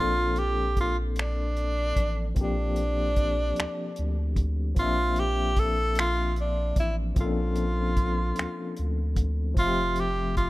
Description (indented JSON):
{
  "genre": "slow six-eight R&B",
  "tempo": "50 BPM (dotted quarters)",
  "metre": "6/8",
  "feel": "straight",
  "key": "Bb lydian",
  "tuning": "A4 = 440 Hz",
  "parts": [
    { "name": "bright tenor saxophone", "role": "melody", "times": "0.0-10.5 s", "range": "D4 to A4", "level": "-28 LUFS", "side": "right 1 dB", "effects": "slapback echo" },
    { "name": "mellow electric guitar", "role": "second line", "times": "0.0-0.5 s", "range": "F4 to D5", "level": "-42 LUFS", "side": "right 3 dB", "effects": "none" },
    { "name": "barky tine electric piano", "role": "accompaniment", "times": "0.0-10.5 s", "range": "F3 to E5", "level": "-32 LUFS", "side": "left 3 dB", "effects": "overdrive, medium tremolo" },
    { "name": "warm sub bass", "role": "bass", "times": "0.0-10.5 s", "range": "F1 to D2", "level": "-28 LUFS", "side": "equal", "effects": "none" },
    { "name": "cloth-damped thuddy drum kit", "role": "drums", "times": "0.4-10.5 s", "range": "finger snaps, hi-hat, kick drum", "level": "-27 LUFS", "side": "equal", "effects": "none" }
  ],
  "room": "small room reverb",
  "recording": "rough home demo mix",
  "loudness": "-24 LUFS",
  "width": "side -18 dB against mid",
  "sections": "0.0-10.5 A section",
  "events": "none",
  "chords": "0.0 Bbmaj9; 9.6 Fmaj9"
}